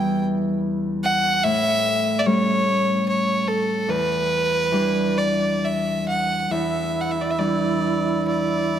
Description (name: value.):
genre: celtic folk, Celtic slow air.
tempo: 64-74 BPM.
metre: 3/4.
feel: rubato.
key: E dorian.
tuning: A4 = 437 Hz.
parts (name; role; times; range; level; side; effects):
rich fiddle; melody; 0.0-8.8 s; A4 to G5; -22 LUFS; right 1 dB; none.
Celtic harp; accompaniment; 0.0-8.8 s; E2 to E4; -23 LUFS; left 1 dB; none.
mellow duduk; second line; 6.5-8.8 s; E4; -24 LUFS; right 7 dB; none.
room: moderate concert hall reverb, RT60 1.9 s.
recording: none.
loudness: -19 LUFS.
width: side -9 dB against mid.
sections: 0.0-6.5 A section; 6.5-8.8 A section.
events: none.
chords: 0.0 Em; 1.5 A7; 3.9 Em7.